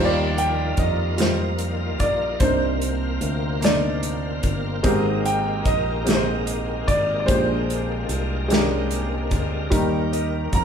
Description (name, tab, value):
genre	slow gospel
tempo	49 BPM (dotted quarters)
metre	6/8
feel	straight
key	Eb major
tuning	A4 = 440 Hz
part	warm upright piano	accompaniment	0.0-10.6 s	Ab2 to G5	-24 LUFS	equal	none
part	bright tonewheel organ	sustained chords	0.0-10.6 s	C3 to Bb4	-30 LUFS	equal	slow rotary speaker, chorus vibrato
part	fingered electric bass	bass	0.0-10.6 s	G1 to F2	-26 LUFS	equal	none
part	clear grand piano	melody	0.4-10.6 s	C5 to Bb5	-26 LUFS	right 1 dB	none
part	natural country drum kit	drums	0.4-10.6 s	hi-hat, kick drum, snare drum	-24 LUFS	equal	none
room	moderate large studio reverb, RT60 0.9 s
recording	band playing live in one room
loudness	-20 LUFS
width	side -7 dB against mid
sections	0.0-10.6 A section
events	none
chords	0.0 Ebmaj9; 2.4 Cm9; 4.8 Abmaj9; 7.3 Bb13; 9.7 Eb